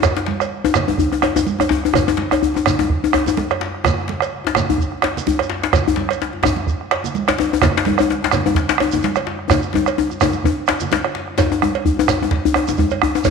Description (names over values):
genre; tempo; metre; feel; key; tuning
west african traditional, West African drum ensemble; 127 BPM; 4/4; swing 56% on 16ths; none; none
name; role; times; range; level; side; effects
bombo; percussion; 0.0-13.3 s; none; -21 LUFS; right 5 dB; none
congas; percussion; 0.0-13.3 s; none; -26 LUFS; right 7 dB; none
cowbell; percussion; 0.0-13.3 s; none; -25 LUFS; right 10 dB; none
djembe; percussion; 0.0-13.3 s; none; -27 LUFS; left 4 dB; none
shekere; percussion; 0.0-13.3 s; none; -30 LUFS; right 5 dB; none
djembe; percussion; 0.2-13.3 s; none; -18 LUFS; left 7 dB; none
room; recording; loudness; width
wet echo chamber reverb, RT60 1.6 s, small room ambience; 1960s-style stereo with parts hard left and right; -16 LUFS; side -5 dB against mid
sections
0.0-11.4 A section; 11.4-13.3 B section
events
drum fill 9.5-11.4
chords
none